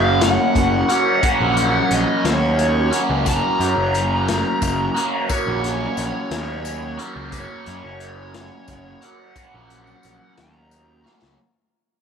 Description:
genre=psychedelic rock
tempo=59 BPM (dotted quarters)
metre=6/8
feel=straight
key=unclear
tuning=A4 = 440 Hz
part: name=fuzz lead guitar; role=melody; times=0.0-11.1 s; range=C#5 to A#5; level=-23 LUFS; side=right 1 dB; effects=distortion, slapback echo
part: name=overdriven combo organ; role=sustained chords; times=0.0-11.4 s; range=A#3 to A#4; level=-32 LUFS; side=right 11 dB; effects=wide subtle chorus
part: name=raw garage guitar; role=riff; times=0.0-11.4 s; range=F#3 to F#4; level=-21 LUFS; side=equal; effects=overdrive, phaser
part: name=fuzz picked electric bass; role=bass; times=0.0-11.4 s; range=F#1 to F#2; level=-24 LUFS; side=equal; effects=overdrive
part: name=raw garage drum kit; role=drums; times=0.2-11.4 s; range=hi-hat, kick drum, snare drum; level=-25 LUFS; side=left 3 dB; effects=none
part: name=tambourine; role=percussion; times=3.3-10.9 s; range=none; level=-37 LUFS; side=left 12 dB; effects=none
room=light reverb, small room ambience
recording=1960s-style stereo with parts hard left and right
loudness=-17 LUFS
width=side -7 dB against mid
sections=0.0-11.4 A section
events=fade-out 0.0-11.4; drum fill 11.1-11.4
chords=0.0 F#

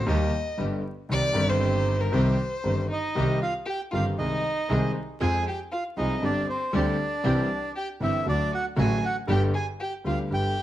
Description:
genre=tango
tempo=117 BPM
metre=4/4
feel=rubato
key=C minor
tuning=A4 = 439 Hz
part: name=warm violin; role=second line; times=0.0-10.6 s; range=C4 to Eb5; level=-32 LUFS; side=left 1 dB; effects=none
part: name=warm concert grand piano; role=accompaniment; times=0.0-10.5 s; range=G1 to Ab4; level=-27 LUFS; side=left 1 dB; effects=none
part: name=warm chamber string section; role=stabs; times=0.0-10.5 s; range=A3 to Ab4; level=-36 LUFS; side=right 2 dB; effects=none
part: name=rich double bass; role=bass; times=0.0-10.5 s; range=G1 to F2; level=-28 LUFS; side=right 1 dB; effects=none
part: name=bandoneon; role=melody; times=2.9-10.6 s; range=C5 to Ab5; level=-30 LUFS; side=right 2 dB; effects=none
room=moderate large studio reverb, RT60 0.8 s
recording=vinyl crackle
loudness=-24 LUFS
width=side -13 dB against mid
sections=0.0-3.2 A section; 3.2-10.6 B section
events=violin solo 0.0-3.2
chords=0.1 Eb; 0.6 G; 1.1 Cm; 4.2 Ab/C; 5.2 Fm; 6.2 Gsus4; 7.2 C; 8.3 D; 9.3 G

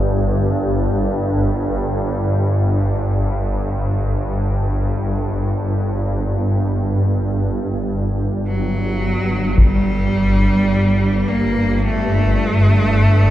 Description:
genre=dark ambient drone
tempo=free time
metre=none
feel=none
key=unclear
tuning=A4 = 440 Hz
part: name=swarming drone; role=drone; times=0.0-13.3 s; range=G1 to G2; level=-17 LUFS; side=equal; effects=built-in reverb
part: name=bright cello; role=melody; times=8.5-13.3 s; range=F#3 to Bb3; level=-18 LUFS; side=equal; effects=diffuse ambient delay
part: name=taiko ensemble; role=percussion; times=9.6-9.8 s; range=none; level=-18 LUFS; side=left 1 dB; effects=low-pass filter on perc
room=wet huge ambient reverb, RT60 7.1 s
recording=dark, warm production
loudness=-16 LUFS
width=side -13 dB against mid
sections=0.0-9.6 A section; 9.6-13.3 B section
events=none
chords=none

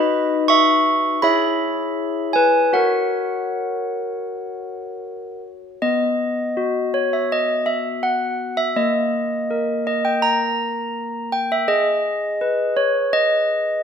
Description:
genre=classical, tune for handbells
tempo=81 BPM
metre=4/4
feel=straight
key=B major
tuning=A4 = 440 Hz
part: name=handbells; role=solo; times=0.0-13.8 s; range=A#3 to C#6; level=-18 LUFS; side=equal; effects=none
room=wet recital hall reverb, RT60 1.4 s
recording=minimal, uncompressed stereo recording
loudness=-17 LUFS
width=side -7 dB against mid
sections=0.0-5.8 A section; 5.8-13.8 B section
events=none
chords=0.0 B/D#; 1.2 C#m7/E; 2.7 F#; 5.8 B; 8.8 N.C.; 11.7 G#m

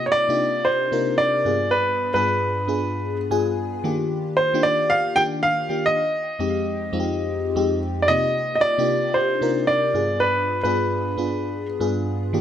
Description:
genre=R&B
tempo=113 BPM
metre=4/4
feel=swing 63% on 16ths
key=unclear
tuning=A4 = 441 Hz
part: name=clear grand piano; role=melody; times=0.0-11.7 s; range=B4 to G5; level=-21 LUFS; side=right 1 dB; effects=none
part: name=FM electric piano with soft pad layer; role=accompaniment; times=0.0-12.4 s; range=F2 to Ab5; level=-24 LUFS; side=left 1 dB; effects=chorus, phaser
room=moderate echo chamber reverb, RT60 1.7 s, small room ambience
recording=none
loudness=-19 LUFS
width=side -10 dB against mid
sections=0.0-12.4 A section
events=FM electric piano fill 3.0-3.8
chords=0.0 Cm11; 1.4 G7b9; 3.8 Ebmaj9; 6.0 Fm9; 8.1 Cm11; 9.9 G7b9

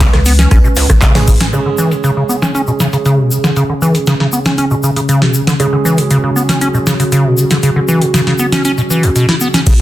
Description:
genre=acid house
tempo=118 BPM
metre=4/4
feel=straight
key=unclear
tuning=A4 = 440 Hz
part: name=dark analog pad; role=sustained chords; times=0.0-9.8 s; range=C#3 to B4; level=-18 LUFS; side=equal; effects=chorus, sidechain pumping
part: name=acid bass, square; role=riff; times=0.0-9.7 s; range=C#2 to E4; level=-13 LUFS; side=equal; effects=tube saturation, sidechain pumping, tape echo
part: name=warm sub bass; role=bass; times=0.0-1.4 s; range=G#1 to C#2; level=-12 LUFS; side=equal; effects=sidechain pumping
part: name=big rock drum kit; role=drums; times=0.0-1.5, 9.7-9.8 s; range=hi-hat, snare drum, tambourine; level=-26 LUFS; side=left 1 dB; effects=sidechain pumping on hats, high-pass filter on hats, high-pass filter on snare, sidechain pumping on perc, high-pass filter on perc, high-pass filter on room
part: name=booming analog drum machine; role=drums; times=0.0-9.8 s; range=crash cymbal, handclaps, hi-hat, rim click, snare drum, toms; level=-16 LUFS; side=equal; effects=low-pass filter on hats, low-pass filter on snare, low-pass filter on toms, low-pass filter on cymbals, low-pass filter on room
part: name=electronic kick drum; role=drums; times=0.0-1.4, 9.7-9.8 s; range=none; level=-10 LUFS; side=equal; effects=none
part: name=egg shaker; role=percussion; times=0.0-9.8 s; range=none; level=-24 LUFS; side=left 4 dB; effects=none
part: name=dark baby grand piano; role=stabs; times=1.2-9.6 s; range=G#3 to G#4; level=-21 LUFS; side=right 6 dB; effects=tape echo
room=moderate studio reverb, RT60 0.6 s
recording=dense, heavily limited modern master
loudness=-9 LUFS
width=side -14 dB against mid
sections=0.0-1.5 A section; 1.5-9.7 B section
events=drop 0.0-1.5; drum fill 1.1-1.5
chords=0.0 C#5

